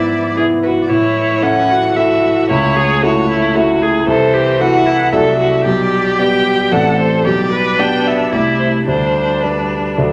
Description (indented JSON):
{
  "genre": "quick classical-period movement for piano quartet",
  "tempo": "113 BPM",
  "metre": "3/4",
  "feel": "straight",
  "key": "A major, G major from 4.1 s",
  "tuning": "A4 = 440 Hz",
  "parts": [
    { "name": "rich violin", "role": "melody", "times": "0.0-10.0 s", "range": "B4 to G5", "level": "-20 LUFS", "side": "equal", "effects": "none" },
    { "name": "warm cello", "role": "second line", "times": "0.0-10.1 s", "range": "E3 to B3", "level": "-26 LUFS", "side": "equal", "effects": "none" },
    { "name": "rich viola", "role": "accompaniment", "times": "0.0-10.1 s", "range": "C#4 to B4", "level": "-19 LUFS", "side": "equal", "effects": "none" },
    { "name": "warm grand piano", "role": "accompaniment", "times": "0.0-10.1 s", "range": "A1 to E5", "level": "-18 LUFS", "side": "equal", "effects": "none" }
  ],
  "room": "moderate large studio reverb, RT60 1.1 s",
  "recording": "none",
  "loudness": "-14 LUFS",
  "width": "mono",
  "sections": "0.0-10.1 A section",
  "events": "none",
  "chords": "0.0 E7/G#; 0.9 A; 2.5 A/C#; 4.1 Am/C; 5.1 D7/C; 5.7 G/B; 6.7 D7/A; 7.3 G/B; 8.3 C; 8.9 G/D"
}